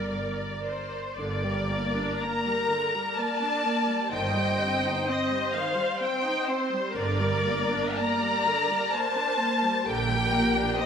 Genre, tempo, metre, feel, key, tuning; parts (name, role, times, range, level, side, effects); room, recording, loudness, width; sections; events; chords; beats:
classical, slow romantic movement for string orchestra; 62 BPM; 3/4; uneven beats, rubato; G minor; A4 = 440 Hz
rich studio violin section; melody; 0.0-10.9 s; C5 to Bb5; -28 LUFS; left 2 dB
dark studio violin section; second line; 0.0-10.9 s; Bb4 to Eb5; -32 LUFS; left 2 dB
rich studio viola section; accompaniment; 0.0-10.9 s; D3 to C5; -30 LUFS; right 1 dB
rich studio cello section; bass; 0.0-10.6 s; G2 to G3; -35 LUFS; right 2 dB
rich studio double bass section; bass; 0.0-10.6 s; G1 to Bb1; -34 LUFS; right 2 dB
wet scoring stage reverb, RT60 1.8 s; -24 LUFS; side -7 dB against mid
0.0-1.2 A section; 1.2-10.9 B section
0.0 Gm; 4.1 Cm/G; 7.0 Gm; 9.9 Gm/Bb
0.13 | 1.18 2.21 3.17 | 4.13 5.08 6.02 | 6.97 7.98 8.94 | 9.87 10.79